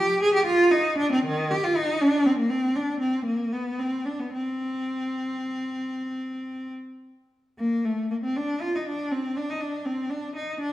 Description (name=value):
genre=classical, baroque-style suite movement for unaccompanied cello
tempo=68-84 BPM (dotted quarters)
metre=12/8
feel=rubato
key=C minor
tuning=A4 = 440 Hz
part: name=rich cello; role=solo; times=0.0-10.7 s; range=Eb3 to Ab4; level=-23 LUFS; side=equal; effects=none
room=wet stone room reverb, RT60 1.3 s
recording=heard from further back in the room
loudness=-23 LUFS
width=side -14 dB against mid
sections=0.0-7.6 A section; 7.6-10.7 A section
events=none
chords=none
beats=0.47 | 1.26 2.01 2.76 3.52 | 4.32 5.13 5.93 6.74 | 7.58 8.36 9.11 9.85 | 10.59